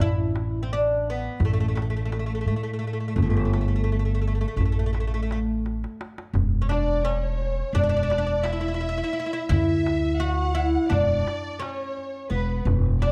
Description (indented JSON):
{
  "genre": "Turkish makam ensemble",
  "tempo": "171 BPM (eighths)",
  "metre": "9/8",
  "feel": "straight",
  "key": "E makam huseyni from 6.3 s",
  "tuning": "A4 = 440 Hz",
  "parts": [
    { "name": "oud", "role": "melody", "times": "0.0-13.1 s", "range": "A3 to F#4-30c", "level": "-29 LUFS", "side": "equal", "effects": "none" },
    { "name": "upright bass", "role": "bass", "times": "0.0-13.1 s", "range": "E1 to A2", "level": "-28 LUFS", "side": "equal", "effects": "none" },
    { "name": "darbuka", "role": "percussion", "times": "0.0-13.1 s", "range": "none", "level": "-29 LUFS", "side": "equal", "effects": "none" },
    { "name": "clear studio violin section", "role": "second line", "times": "6.7-13.1 s", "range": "B4 to F#5-30c", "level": "-35 LUFS", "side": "equal", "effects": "none" }
  ],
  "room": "light reverb",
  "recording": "dark, warm production",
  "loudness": "-25 LUFS",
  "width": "mono",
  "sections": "0.0-6.3 A section; 6.3-13.1 B section",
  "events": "drum fill 5.6-6.3",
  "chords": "none",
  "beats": "| 0.01 0.36 0.71 1.06 1.42 1.77 2.12 2.47 2.82 | 3.17 3.53 3.88 4.23 4.58 4.93 5.29 5.64 5.99 | 6.34 6.69 7.04 7.39 7.75 8.10 8.45 8.80 9.15 | 9.50 9.85 10.20 10.55 10.91 11.26 11.61 11.96 12.31 | 12.66 13.01"
}